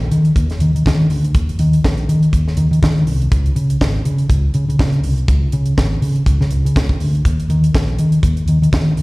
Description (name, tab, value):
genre	disco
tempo	122 BPM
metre	4/4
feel	swing 56% on 16ths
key	unclear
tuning	A4 = 440 Hz
part	hollow-body short-scale fingered electric bass	bass	0.0-9.0 s	Ab1 to Eb3	-14 LUFS	equal	none
part	tight funk drum kit	drums	0.1-9.0 s	hi-hat, kick drum, snare drum	-18 LUFS	equal	none
room	little or no reverb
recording	live gig heard through the venue's PA, recital hall reverb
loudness	-13 LUFS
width	side -23 dB against mid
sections	0.0-9.0 A section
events	none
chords	none